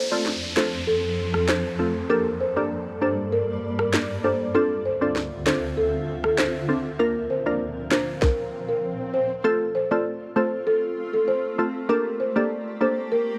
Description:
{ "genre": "dancehall", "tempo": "98 BPM", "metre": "4/4", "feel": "straight", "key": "unclear", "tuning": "A4 = 440 Hz", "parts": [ { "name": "buzzing marimba with soft mallets", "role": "melody", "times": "0.0-13.3 s", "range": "A4 to D5", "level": "-27 LUFS", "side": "equal", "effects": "delay" }, { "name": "granular cloud pad", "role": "sustained chords", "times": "0.0-13.4 s", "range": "D2 to E5", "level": "-33 LUFS", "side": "equal", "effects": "built-in reverb, sidechain pumping" }, { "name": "downlifter and swell", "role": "sound effects", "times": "0.0-9.4 s", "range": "none", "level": "-37 LUFS", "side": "equal", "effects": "none" }, { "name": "glassy wavetable pluck", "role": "accompaniment", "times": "0.1-13.0 s", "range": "A3 to Bb4", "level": "-28 LUFS", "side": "equal", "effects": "chorus" }, { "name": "island pop drum kit", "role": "drums", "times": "0.3-8.4 s", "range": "handclaps, kick drum, rim click, snare drum", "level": "-28 LUFS", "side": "equal", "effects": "none" } ], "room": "light reverb", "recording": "none", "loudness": "-24 LUFS", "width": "mono", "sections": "0.0-9.4 A section; 9.4-13.4 B section", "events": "swell 8.2-9.4", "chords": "0.0 F; 2.1 Gmadd9; 4.5 Dm7; 7.0 Bb; 9.4 F; 11.9 Gmadd9", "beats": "0.26 0.87 1.48 | 2.10 2.71 3.32 3.93 | 4.55 5.16 5.77 6.38 | 7.00 7.61 8.22 8.83 | 9.44 10.06 10.67 11.28 | 11.89 12.51 13.12" }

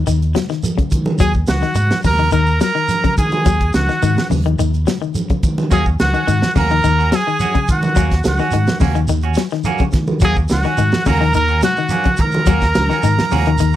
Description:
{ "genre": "afrobeat", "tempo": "106 BPM", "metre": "4/4", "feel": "straight", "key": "Eb minor", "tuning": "A4 = 440 Hz", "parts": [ { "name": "semi-hollow electric guitar", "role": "arpeggios", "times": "0.0-13.8 s", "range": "Db3 to Gb3", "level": "-21 LUFS", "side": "left 10 dB", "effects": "none" }, { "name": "fingered electric bass", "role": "bass", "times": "0.0-13.8 s", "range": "Db2 to Eb3", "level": "-18 LUFS", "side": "equal", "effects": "none" }, { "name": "tight funk drum kit", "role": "drums", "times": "0.1-13.7 s", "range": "hi-hat, kick drum, snare drum", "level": "-19 LUFS", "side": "equal", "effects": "none" }, { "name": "congas", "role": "percussion", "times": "0.1-13.7 s", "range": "none", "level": "-23 LUFS", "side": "right 2 dB", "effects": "none" }, { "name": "shekere", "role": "percussion", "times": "0.1-13.8 s", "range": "none", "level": "-27 LUFS", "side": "right 2 dB", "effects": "none" }, { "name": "clear trumpet", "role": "melody", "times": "1.2-13.8 s", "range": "Gb4 to Bb4", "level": "-19 LUFS", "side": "equal", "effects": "none" }, { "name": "melodica", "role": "second line", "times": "1.2-13.8 s", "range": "Gb5 to Bb5", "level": "-24 LUFS", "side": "right 6 dB", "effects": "none" }, { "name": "semi-hollow electric guitar", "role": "stabs", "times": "5.7-13.5 s", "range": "Bb3 to Gb4", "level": "-25 LUFS", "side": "right 7 dB", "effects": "none" } ], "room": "studio ambience", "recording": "dry, close 1970s-style studio recording", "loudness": "-13 LUFS", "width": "side -13 dB against mid", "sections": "0.0-13.8 A section", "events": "none", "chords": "0.0 Ebm7", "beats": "0.07 0.64 | 1.20 1.76 2.33 2.89 | 3.45 4.02 4.58 5.14 | 5.71 6.27 6.83 7.40 | 7.96 8.52 9.09 9.65 | 10.21 10.78 11.34 11.90 | 12.47 13.03 13.59" }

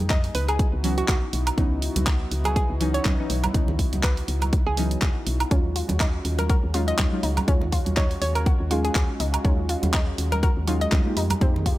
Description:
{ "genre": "deep house", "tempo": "122 BPM", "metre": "4/4", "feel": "swing 56% on 16ths", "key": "unclear", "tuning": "A4 = 443 Hz", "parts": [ { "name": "warm analog pad", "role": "sustained chords", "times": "0.0-11.8 s", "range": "Ab3 to Ab4", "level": "-34 LUFS", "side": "equal", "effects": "chorus, sidechain pumping" }, { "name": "woody FM bass", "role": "bass", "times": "0.0-11.7 s", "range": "Cb2 to F2", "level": "-26 LUFS", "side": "equal", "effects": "tube saturation, sidechain pumping" }, { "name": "hollow square pluck", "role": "melody", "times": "0.1-11.0 s", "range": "Gb4 to Eb5", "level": "-31 LUFS", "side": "equal", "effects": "chorus, vintage 12-bit sampler grit, analog delay" }, { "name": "electronic kick drum", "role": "drums", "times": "0.1-11.8 s", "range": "none", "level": "-22 LUFS", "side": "equal", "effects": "none" }, { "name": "house drum kit", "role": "drums", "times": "0.1-11.8 s", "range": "handclaps, hi-hat, woodblock", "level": "-29 LUFS", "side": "right 2 dB", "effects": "none" }, { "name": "deep mellow chord stab", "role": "stabs", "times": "0.8-11.5 s", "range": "Fb3 to Ab4", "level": "-30 LUFS", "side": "equal", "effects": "chorus, sidechain pumping, analog delay" }, { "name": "congas", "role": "percussion", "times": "2.0-11.6 s", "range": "none", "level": "-32 LUFS", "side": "right 2 dB", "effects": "none" }, { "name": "analog pluck", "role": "arpeggios", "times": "5.5-11.7 s", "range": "C4 to Gb4", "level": "-33 LUFS", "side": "left 2 dB", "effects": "chorus, cassette tape, sidechain pumping, analog delay" } ], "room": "digital ambience", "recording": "none", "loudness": "-20 LUFS", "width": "side -16 dB against mid", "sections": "0.0-11.8 A section", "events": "none", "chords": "0.3 Dbm11; 5.5 Ebm11; 11.2 Fm11", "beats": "0.10 0.59 1.08 | 1.58 2.07 2.56 3.05 | 3.54 4.04 4.53 5.02 | 5.51 6.00 6.50 6.99 | 7.48 7.97 8.46 8.95 | 9.45 9.94 10.43 10.92 | 11.41" }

